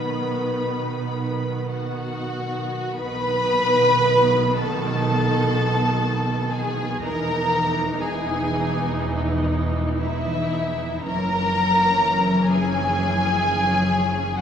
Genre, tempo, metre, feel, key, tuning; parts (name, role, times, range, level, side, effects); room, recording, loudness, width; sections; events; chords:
classical, slow romantic movement for string orchestra; 45-64 BPM; 4/4; rubato; B major; A4 = 439 Hz
muted studio violin section; melody; 0.0-14.4 s; E5 to B5; -24 LUFS; left 2 dB
muted studio violin section; second line; 0.0-14.4 s; E4 to B4; -26 LUFS; equal
muted studio viola section; accompaniment; 0.0-14.4 s; D#3 to D#4; -27 LUFS; right 1 dB
muted studio cello section; bass; 0.0-14.4 s; E2 to B2; -27 LUFS; equal
muted studio double bass section; bass; 0.0-14.4 s; E1 to B1; -29 LUFS; right 3 dB
wet recital hall reverb, RT60 1.8 s; recorded in a church or concert hall; -19 LUFS; side -8 dB against mid
0.0-3.0 A section; 3.0-14.4 B section
0.0 B; 7.0 Emaj7; 11.0 F#7